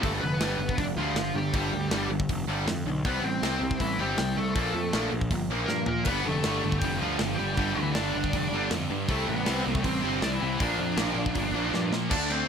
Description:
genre	punk rock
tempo	159 BPM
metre	4/4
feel	straight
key	unclear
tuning	A4 = 440 Hz
part	high-gain lead guitar	melody	0.0-12.5 s	E3 to D5	-30 LUFS	equal	distortion
part	biting overdriven guitar	riff	0.0-12.5 s	G2 to D4	-33 LUFS	left 12 dB	none
part	distorted electric guitar	riff	0.0-12.5 s	G2 to D4	-33 LUFS	right 12 dB	overdrive
part	high-gain distorted guitar	riff	0.0, 6.1-12.1 s	G2 to C4	-33 LUFS	equal	distortion
part	fuzz picked electric bass	bass	0.0-12.4 s	F1 to Bb2	-32 LUFS	left 1 dB	overdrive
part	tight metal drum kit	drums	0.0-12.4 s	crash cymbal, hi-hat, kick drum, snare drum, toms	-33 LUFS	equal	none
room	little or no reverb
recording	none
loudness	-25 LUFS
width	side -7 dB against mid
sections	0.0-12.1 A section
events	drum fill 5.7-6.1, 11.7-12.1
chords	0.0 G; 3.0 C; 4.6 Bb5; 6.1 G5; 9.1 C; 10.6 Bb

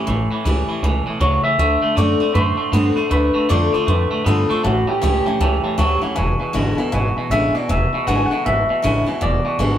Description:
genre	rock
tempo	157 BPM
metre	4/4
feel	swing 62% on 8ths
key	unclear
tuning	A4 = 440 Hz
part	picked steel-string acoustic guitar	accompaniment	0.0-9.8 s	E2 to F#4	-23 LUFS	left 3 dB	none
part	twangy electric guitar	riff	0.0-9.8 s	E2 to B3	-22 LUFS	right 3 dB	none
part	upright bass	bass	0.1-9.8 s	E1 to G2	-20 LUFS	equal	none
part	electric guitar through a small old amp	melody	1.2-9.6 s	F#4 to G#5	-21 LUFS	equal	none
part	dark upright piano	accompaniment	4.6-9.7 s	B4 to A5	-29 LUFS	left 4 dB	none
room	moderate studio reverb, RT60 0.8 s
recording	band playing live in one room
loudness	-16 LUFS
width	side -10 dB against mid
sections	0.0-9.8 A section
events	none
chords	0.0 A7; 1.6 D7; 3.1 Dm7; 4.6 A7; 6.2 E7

